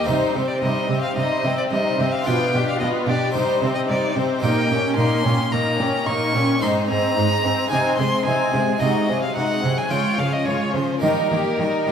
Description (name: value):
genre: classical, baroque-style concerto movement with solo episodes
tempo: 110 BPM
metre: 4/4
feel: straight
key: Ab major from 4.4 s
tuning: A4 = 441 Hz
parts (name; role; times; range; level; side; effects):
- clear violin; melody; 0.0-11.9 s; Bb4 to Db6; -24 LUFS; left 1 dB; none
- rich chamber violin section; melody; 0.0-11.9 s; Gb4 to Db5; -29 LUFS; left 3 dB; none
- rich chamber violin section; second line; 0.0-11.9 s; C4 to G4; -24 LUFS; left 2 dB; none
- clear studio viola section; accompaniment; 0.0-11.9 s; F3 to D4; -27 LUFS; right 1 dB; none
- harpsichord; accompaniment; 0.0-11.9 s; Ab2 to Ab4; -26 LUFS; right 1 dB; none
- rich chamber cello section; bass; 0.1-11.9 s; Ab2 to Eb3; -25 LUFS; right 2 dB; none
room: wet recital hall reverb, RT60 1.4 s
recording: heard from further back in the room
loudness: -18 LUFS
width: side -7 dB against mid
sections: 0.0-11.9 A section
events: none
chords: 0.1 Cm; 2.3 G7/B; 3.3 Cm; 4.4 Eb7/Bb; 6.6 Ab; 7.7 Ab/C; 8.8 Ab7/C; 9.9 Db; 11.0 Eb